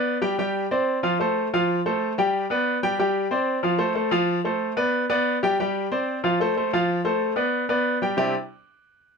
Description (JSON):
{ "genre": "latin", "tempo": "184 BPM", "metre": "4/4", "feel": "straight", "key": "unclear", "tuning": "A4 = 440 Hz", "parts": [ { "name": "clear baby grand piano", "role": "solo", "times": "0.0-8.3 s", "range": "C3 to G5", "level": "-21 LUFS", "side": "equal", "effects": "none" } ], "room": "light reverb", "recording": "none", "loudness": "-21 LUFS", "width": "side -5 dB against mid", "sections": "0.0-3.0 A section; 3.0-8.2 B section", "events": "none", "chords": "0.4 Csus2; 1.0 F; 1.7 Fadd9; 2.3 G; 3.0 Csus2; 3.6 F; 4.3 Dm7; 4.9 G; 5.6 Csus2; 6.2 F; 6.9 Dm7; 7.5 G; 8.2 Cadd9" }